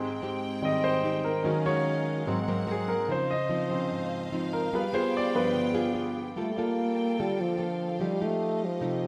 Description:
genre	bossa nova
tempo	146 BPM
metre	4/4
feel	straight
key	unclear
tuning	A4 = 440 Hz
part	clear baby grand piano	accompaniment	0.0-8.0 s	G2 to Eb5	-31 LUFS	equal	none
part	nylon-string guitar	accompaniment	0.0-9.1 s	Ab2 to A4	-34 LUFS	equal	none
part	clear symphonic string section	sustained chords	0.0-9.1 s	Ab3 to G5	-39 LUFS	equal	none
part	breathy trombone	melody	6.4-9.1 s	F3 to Bb3	-31 LUFS	equal	none
room	moderate large studio reverb, RT60 1.3 s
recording	none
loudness	-29 LUFS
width	mono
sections	0.0-6.4 A section; 6.4-9.1 B section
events	grand piano solo 0.0-6.4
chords	0.0 Abmaj7; 1.4 Ebm11; 2.3 Ab9; 3.1 Dbmaj9; 4.7 G7b9; 6.4 Gm9; 8.0 F9

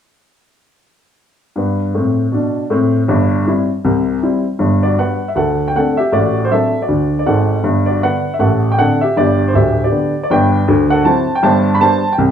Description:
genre	jazz, stride piano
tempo	158 BPM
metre	4/4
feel	swing 58% on 8ths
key	G major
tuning	A4 = 440 Hz
part	warm upright piano	solo	1.6-12.3 s	D1 to B5	-12 LUFS	equal	none
room	moderate large studio reverb, RT60 0.8 s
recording	band playing live in one room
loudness	-12 LUFS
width	side -8 dB against mid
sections	1.6-4.6 A section; 4.6-12.3 B section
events	none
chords	1.6 G; 3.1 C/G; 4.6 G; 5.4 D5; 6.1 D7/A; 7.6 G; 8.4 D5/A; 9.2 G; 10.7 D9; 11.4 G

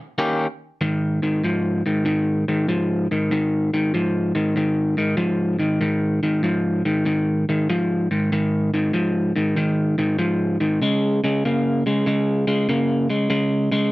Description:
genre	blues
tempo	96 BPM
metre	4/4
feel	swing 67% on 8ths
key	unclear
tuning	A4 = 440 Hz
part	electric guitar at the edge of break-up	solo	0.2-13.9 s	Ab2 to G4	-18 LUFS	equal	none
room	moderate club reverb, RT60 0.6 s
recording	none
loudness	-19 LUFS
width	side -19 dB against mid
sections	0.8-13.9 A section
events	none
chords	0.0 Eb7; 0.8 Ab5; 10.8 Db5

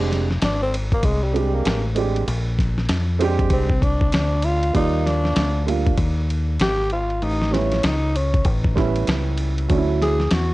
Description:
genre	hip hop, jazz-hop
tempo	97 BPM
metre	4/4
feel	swing 61% on 16ths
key	unclear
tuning	A4 = 438 Hz
part	dark upright piano	accompaniment	0.0-10.2 s	F#3 to D5	-23 LUFS	right 5 dB	cassette tape
part	deep dub fingered electric bass	bass	0.0-10.5 s	F1 to F2	-22 LUFS	left 1 dB	none
part	dusty soul sampler-style drum kit	drums	0.1-10.5 s	hi-hat, kick drum, ride cymbal, snare drum	-23 LUFS	equal	cassette tape
part	growling tenor saxophone	melody	0.4-10.5 s	G3 to Ab4	-24 LUFS	equal	cassette tape, analog delay
room	digital ambience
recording	home recording on cassette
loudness	-18 LUFS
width	side -18 dB against mid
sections	0.0-10.5 A section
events	tenor saxophone solo 0.0-10.5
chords	0.0 Fm69; 2.3 Bb13; 4.7 Ebmaj9; 7.2 A9; 9.7 Dmaj9

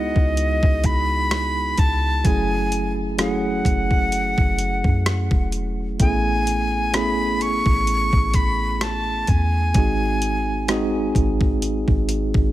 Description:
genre	contemporary R&B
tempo	64 BPM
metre	4/4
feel	swing 54% on 16ths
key	C# minor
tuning	A4 = 440 Hz
part	breathy bright jazz flute	melody	0.0-11.2 s	D#5 to C#6	-24 LUFS	equal	digital delay
part	tine electric piano	accompaniment	0.0-12.5 s	F#3 to G#4	-24 LUFS	right 1 dB	fast stereo tremolo
part	soft 808-style bass	bass	0.0-12.5 s	E1 to F#2	-24 LUFS	equal	none
part	gated 80s digital drum machine	drums	0.2-12.5 s	hi-hat, kick drum, rim click	-20 LUFS	equal	none
room	little or no reverb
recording	none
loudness	-18 LUFS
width	side -14 dB against mid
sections	0.0-12.5 A section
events	none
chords	0.0 C#m11; 2.2 F#m7; 6.0 Amaj9; 9.8 G#7

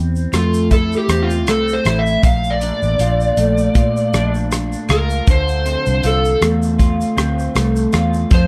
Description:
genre	indie pop, bedroom pop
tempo	79 BPM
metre	4/4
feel	swing 55% on 16ths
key	unclear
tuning	A4 = 440 Hz
part	electric guitar through a small old amp	accompaniment	0.0-8.5 s	Bb2 to F4	-23 LUFS	equal	analog chorus, warbly pitch drift
part	vintage muted fingered electric bass	bass	0.0-8.5 s	A1 to Bb2	-21 LUFS	equal	none
part	damped 70s drum kit	drums	0.2-8.5 s	hi-hat, kick drum, rim click, shaker	-19 LUFS	equal	none
part	overdriven slide guitar	melody	0.3-8.5 s	F4 to F5	-21 LUFS	equal	lush chorus, slapback echo
room	light reverb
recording	none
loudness	-16 LUFS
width	mono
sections	0.0-8.5 A section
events	electric slide guitar solo 0.0-8.5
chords	0.0 Fmaj7; 2.2 Bbmaj7; 5.3 Dm7

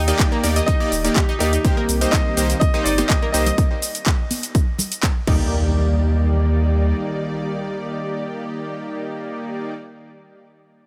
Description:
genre	progressive house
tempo	124 BPM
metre	4/4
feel	straight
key	Eb major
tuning	A4 = 440 Hz
part	clear baby grand piano	melody	0.0-5.0 s	G4 to G5	-28 LUFS	equal	sidechain pumping, delay
part	airy breathy pad	sustained chords	0.0-9.7 s	Eb3 to D5	-31 LUFS	equal	chorus, vintage 12-bit sampler grit, sidechain pumping
part	round analog bass	bass	0.0-6.9 s	Eb1 to Eb2	-22 LUFS	equal	tube saturation, sidechain pumping
part	analog pluck	arpeggios	0.1-5.7 s	Bb3 to Eb6	-30 LUFS	equal	chorus, sidechain pumping, delay
part	supersaw stab	stabs	0.1-9.7 s	Bb3 to D5	-28 LUFS	equal	sidechain pumping, delay
part	house drum kit	drums	0.1-5.4 s	crash cymbal, handclaps, hi-hat, shaker	-27 LUFS	equal	overdrive, sidechain pumping on hats, small room ambience, sidechain pumping on perc, sidechain pumping on cymbals
part	electronic kick drum	drums	0.2-5.4 s	none	-21 LUFS	equal	overdrive, small room ambience
part	congas	percussion	0.4-4.9 s	none	-31 LUFS	equal	sidechain pumping on perc
part	impact	sound effects	5.3-9.8 s	none	-32 LUFS	equal	none
room	little or no reverb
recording	none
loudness	-20 LUFS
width	mono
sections	0.0-5.5 A section; 5.5-9.4 B section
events	drop 0.0-5.5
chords	0.0 Ebmaj7; 1.6 Cm7; 5.3 Ebmaj7

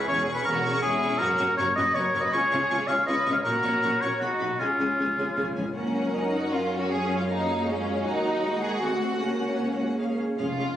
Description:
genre	classical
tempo	157 BPM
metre	3/4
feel	straight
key	F# major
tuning	A4 = 440 Hz
part	rich symphonic violin section	melody	0.0-10.7 s	E#5 to C#6	-37 LUFS	left 2 dB	none
part	warm oboe	second line	0.0-5.6 s	E#4 to E#5	-24 LUFS	equal	none
part	warm symphonic violin section	second line	0.0-10.8 s	C#4 to C#5	-31 LUFS	left 1 dB	none
part	rich symphonic viola section	accompaniment	0.0-10.7 s	A#3 to A#4	-32 LUFS	right 1 dB	none
part	clear symphonic double bass section	bass	0.0-10.7 s	E1 to F#2	-34 LUFS	right 1 dB	none
part	warm symphonic cello section	bass	0.0-10.2 s	E2 to D#4	-32 LUFS	right 1 dB	none
part	timpani	percussion	4.6-5.7 s	C#3	-38 LUFS	left 1 dB	none
part	dark French horn section	sustained chords	5.8-10.8 s	Ab3 to A#4	-33 LUFS	left 2 dB	none
room	wet recital hall reverb, RT60 1.7 s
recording	recorded on a phone in the room, club reverb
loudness	-23 LUFS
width	side -11 dB against mid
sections	0.0-5.8 A section; 5.8-10.8 B section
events	timpani fill 4.6-5.8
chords	0.1 C#m/E; 1.2 F#; 2.3 C#; 3.5 F#/A#; 4.2 B; 4.6 C#; 5.8 F#; 6.9 C#/F#; 8.1 D#m; 8.8 D7; 9.2 F#/C#; 10.0 C#

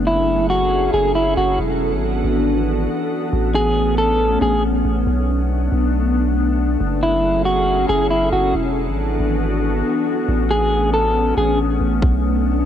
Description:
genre	hip hop, atmospheric cloud-rap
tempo	138 BPM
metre	4/4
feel	half-time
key	B dorian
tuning	A4 = 441 Hz
part	glassy FM pad	sustained chords	0.0-12.7 s	E3 to A4	-20 LUFS	left 1 dB	ensemble chorus, built-in reverb, sidechain pumping, cassette tape
part	long sustained 808-style bass	bass	0.0-12.7 s	E1 to B1	-21 LUFS	equal	none
part	electric guitar at the edge of break-up	melody	0.1-11.6 s	E4 to A4	-19 LUFS	equal	cassette tape, analog delay
part	electronic kick drum	drums	12.0-12.1 s	none	-16 LUFS	equal	cassette tape
part	twinkling granular texture	texture	12.3-12.7 s	D4 to A5	-50 LUFS	right 4 dB	none
room	light reverb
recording	home recording on cassette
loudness	-16 LUFS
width	side -10 dB against mid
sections	0.0-12.7 A section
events	hi-hats muted 12.0-12.7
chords	0.0 F#m9; 1.6 E7sus4; 3.3 Amaj9; 5.1 Bm7; 6.8 F#m9; 8.5 E7sus4; 10.3 Amaj9; 12.0 Bm9

